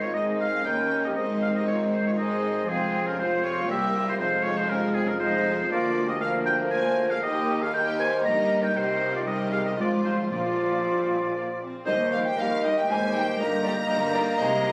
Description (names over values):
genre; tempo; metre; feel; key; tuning
quick classical-period movement for symphony orchestra; 118 BPM; 3/4; straight; Eb major from 5.7 s; A4 = 441 Hz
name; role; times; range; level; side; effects
clear studio violin section; melody; 0.0-14.7 s; Ab4 to Bb5; -39 LUFS; equal; none
clear clarinet; second line; 0.0-14.7 s; F4 to Eb5; -34 LUFS; equal; none
mellow hollow silver concert flute; second line; 0.0-14.7 s; C4 to Bb5; -33 LUFS; equal; none
rich chamber violin section; second line; 0.0-14.7 s; G3 to C5; -40 LUFS; equal; none
warm oboe; second line; 0.0-14.7 s; G4 to Bb5; -32 LUFS; equal; none
mellow bassoon; accompaniment; 0.0-14.7 s; Eb3 to G3; -34 LUFS; equal; none
rich chamber viola section; accompaniment; 0.0-14.7 s; Eb3 to Eb4; -36 LUFS; equal; none
mellow French horn section; sustained chords; 0.0-14.7 s; Eb3 to G4; -37 LUFS; equal; none
clear chamber double bass section; bass; 0.0-14.7 s; F1 to Eb2; -38 LUFS; equal; none
rich studio cello section; bass; 0.0-14.7 s; C2 to C3; -35 LUFS; equal; none
timpani; percussion; 10.3-11.1 s; Bb2; -44 LUFS; equal; none
room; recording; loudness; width
wet recital hall reverb, RT60 1.5 s; recorded on a phone in the room, studio ambience; -25 LUFS; mono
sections
0.0-11.9 A section; 11.9-14.7 B section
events
none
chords
0.0 Ab; 0.7 Eb7; 1.2 Ab; 2.7 Fm; 3.7 C7; 4.2 Fm7; 5.7 Bb/D; 7.2 Eb; 8.3 Eb/G; 8.8 Cm; 9.8 Fm/Ab; 10.3 Bb; 11.9 Eb; 13.4 Eb/G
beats
0.14 0.65 | 1.16 1.67 2.17 | 2.68 3.18 3.69 | 4.19 4.69 5.20 | 5.70 6.21 6.72 | 7.23 7.74 8.25 | 8.76 9.27 9.79 | 10.31 10.84 11.36 | 11.87 12.38 12.89 | 13.40 13.90 14.41